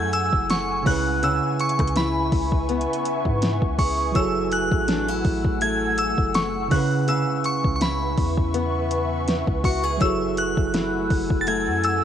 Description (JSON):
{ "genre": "contemporary R&B", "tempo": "82 BPM", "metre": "4/4", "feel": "swing 54% on 16ths", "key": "F# minor", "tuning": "A4 = 440 Hz", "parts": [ { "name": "glassy synth bell", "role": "melody", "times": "0.0-12.0 s", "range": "B5 to A6", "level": "-25 LUFS", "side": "equal", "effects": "chorus, phaser, cassette tape, analog delay" }, { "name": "bell-like tine electric piano", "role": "accompaniment", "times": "0.0-12.0 s", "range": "C#3 to B4", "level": "-28 LUFS", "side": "right 10 dB", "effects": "auto-pan, cassette tape" }, { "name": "ethereal airy pad", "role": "sustained chords", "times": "0.0-12.0 s", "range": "A3 to E6", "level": "-30 LUFS", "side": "equal", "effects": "ensemble chorus, built-in reverb, sidechain pumping, cassette tape" }, { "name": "fingerpicked steel-string acoustic guitar", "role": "arpeggios", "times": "0.0-12.0 s", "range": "C#3 to G#4", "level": "-28 LUFS", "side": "left 9 dB", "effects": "cassette tape, analog delay" }, { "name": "soft 808-style bass", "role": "bass", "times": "0.0-12.0 s", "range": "F#1 to C#3", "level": "-28 LUFS", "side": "equal", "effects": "none" }, { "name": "smooth R&B drum kit", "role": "drums", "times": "0.1-12.0 s", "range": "hi-hat, kick drum, rim click, snare drum", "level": "-24 LUFS", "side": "equal", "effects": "overdrive, cassette tape" } ], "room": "light reverb, digital ambience", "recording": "home recording on cassette", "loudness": "-20 LUFS", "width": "side -9 dB against mid", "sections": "0.0-12.0 A section", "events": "none", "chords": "0.0 F#m9; 0.9 C#m7; 4.2 F#m9; 6.7 C#m7; 10.0 F#m9", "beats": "0.49 | 1.23 1.96 2.69 3.42 | 4.15 4.89 5.62 6.35 | 7.08 7.81 8.54 9.28 | 10.01 10.74 11.47" }